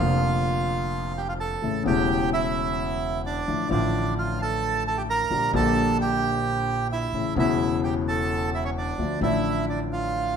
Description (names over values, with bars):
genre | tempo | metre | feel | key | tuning
tango | 130 BPM | 4/4 | rubato | D minor | A4 = 440 Hz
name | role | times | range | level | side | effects
bandoneon | melody | 0.0-10.4 s | C#4 to Bb5 | -26 LUFS | right 5 dB | none
warm grand piano | accompaniment | 0.0-10.4 s | E1 to G4 | -26 LUFS | left 4 dB | none
upright bass | bass | 0.0-10.4 s | E1 to D2 | -30 LUFS | right 2 dB | none
room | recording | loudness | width
moderate large studio reverb, RT60 0.8 s | minimal, uncompressed stereo recording | -22 LUFS | side -7 dB against mid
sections
0.0-10.4 A section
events
none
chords
0.0 Bb; 1.6 A; 3.5 Dm/A; 5.3 Gm/Bb; 7.1 A; 9.0 Dm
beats
0.22 0.69 1.16 | 1.63 2.09 2.56 3.02 | 3.48 3.94 4.40 4.85 | 5.31 5.77 6.22 6.68 | 7.13 7.59 8.05 8.52 | 8.98 9.45 9.90 10.36